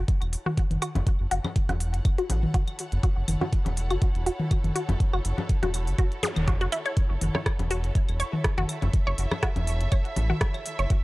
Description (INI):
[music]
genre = minimal techno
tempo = 122 BPM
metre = 4/4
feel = swing 54% on 16ths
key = F# minor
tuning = A4 = 440 Hz
[part]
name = resonant blip pluck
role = riff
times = 0.0-10.8 s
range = E4 to C#5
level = -32 LUFS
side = equal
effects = phaser, sidechain pumping, analog delay
[part]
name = round analog bass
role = bass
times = 0.0-10.9 s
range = E1 to A1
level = -26 LUFS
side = equal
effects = sidechain pumping
[part]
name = dark studio string section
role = texture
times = 0.0-11.0 s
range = E4 to F#5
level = -39 LUFS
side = right 1 dB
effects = sidechain pumping
[part]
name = electronic kick drum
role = drums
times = 0.1-11.0 s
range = none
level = -24 LUFS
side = equal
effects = none
[part]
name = minimal click drum kit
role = drums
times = 0.1-11.0 s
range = hi-hat, rim click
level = -33 LUFS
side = equal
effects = overdrive
[part]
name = electronic claves, toms and congas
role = percussion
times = 0.2-10.6 s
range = none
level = -31 LUFS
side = left 2 dB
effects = analog delay
[part]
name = zap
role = sound effects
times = 6.2-6.4 s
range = none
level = -35 LUFS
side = right 1 dB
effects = none
[sound]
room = little or no reverb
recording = dry, gritty hardware recording, cassette tape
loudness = -23 LUFS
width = side -20 dB against mid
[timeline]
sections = 0.0-11.0 A section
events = fade-in on string section 0.0-11.0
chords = 0.0 F#m7